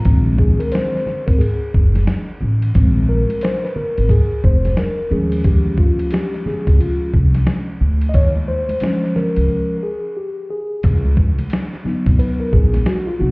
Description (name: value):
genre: hip hop, jazz-hop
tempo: 89 BPM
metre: 4/4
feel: swing 62% on 16ths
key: unclear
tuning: A4 = 440 Hz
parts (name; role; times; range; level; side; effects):
- mellow tine electric piano; accompaniment; 0.0-13.3 s; Eb3 to Eb5; -20 LUFS; left 1 dB; slow stereo tremolo
- lo-fi sampler-style drum kit; drums; 0.0-13.1 s; hi-hat, kick drum, ride cymbal, snare drum; -16 LUFS; equal; none
- egg shaker and congas; percussion; 0.0-13.3 s; none; -29 LUFS; right 1 dB; none
- upright bass; bass; 0.1-13.3 s; F1 to Eb2; -17 LUFS; equal; none
room: little or no reverb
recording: heard muffled through a wall, stone room reverb, EQ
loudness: -14 LUFS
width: side -28 dB against mid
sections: 0.1-13.3 A section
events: tine electric piano solo 0.1-13.3; break 9.5-10.8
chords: 0.1 Bb9sus4; 5.1 Eb9sus4; 10.8 Db9sus4